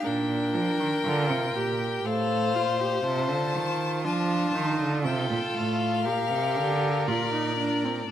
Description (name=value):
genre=classical, baroque-style fugue for string quartet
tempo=60 BPM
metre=4/4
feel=straight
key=unclear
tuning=A4 = 440 Hz
part: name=bright violin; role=melody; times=0.0-8.1 s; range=D5 to A5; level=-31 LUFS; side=left 8 dB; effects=none
part: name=rich violin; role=second line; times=0.0-8.1 s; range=F4 to C5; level=-31 LUFS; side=left 3 dB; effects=none
part: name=rich viola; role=accompaniment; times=0.0-8.1 s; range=C4 to A4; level=-30 LUFS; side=right 2 dB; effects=none
part: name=rich cello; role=bass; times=0.0-8.1 s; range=A2 to F3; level=-29 LUFS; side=right 3 dB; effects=none
room=moderate recital hall reverb, RT60 1.4 s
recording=none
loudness=-24 LUFS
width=side -10 dB against mid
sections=0.0-8.1 A section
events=none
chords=0.0 Bb; 2.1 F/A; 6.1 Bb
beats=| 0.05 1.05 2.05 3.05 | 4.05 5.05 6.05 7.07 | 8.09